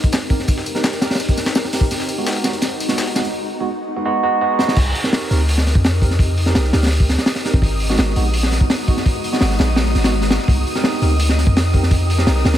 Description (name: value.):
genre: drum and bass, jungle.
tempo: 168 BPM.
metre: 4/4.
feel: straight.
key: unclear.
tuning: A4 = 440 Hz.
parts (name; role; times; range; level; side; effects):
breakbeat sampler-style drum kit; drums; 0.0-3.3 s; hi-hat, snare drum, tambourine; -26 LUFS; left 2 dB; high-pass filter on perc, high-pass filter on snare, high-pass filter on hats.
crunchy breakbeat drum kit; drums; 0.0-12.6 s; crash cymbal, hi-hat, kick drum, snare drum; -18 LUFS; equal; none.
tine electric piano; stabs; 0.3-12.5 s; Ab3 to Bb4; -24 LUFS; right 3 dB; lush chorus, dub echo.
long sustained 808-style bass; bass; 4.8-12.6 s; Ab1 to F2; -17 LUFS; equal; none.
wind-like tuned noise texture; texture; 5.2-12.6 s; Eb5 to Eb6; -29 LUFS; equal; built-in reverb.
room: small room ambience.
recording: none.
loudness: -15 LUFS.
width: side -12 dB against mid.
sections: 0.0-4.8 A section; 4.8-12.6 B section.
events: build-up 0.0-4.8; drum fill 1.9-3.3, 4.6; drop 4.8-12.6.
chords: 0.0 Cm7; 1.9 Abm7; 4.8 Cm7; 7.6 Abm7; 10.5 Cm7.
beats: 0.13 | 0.48 0.84 1.20 1.56 | 1.91 2.27 2.63 2.98 | 3.34 3.70 4.06 4.41 | 4.77 5.13 5.49 5.84 | 6.20 6.56 6.91 7.27 | 7.63 7.99 8.34 8.70 | 9.06 9.41 9.77 10.13 | 10.48 10.84 11.20 11.56 | 11.91 12.27.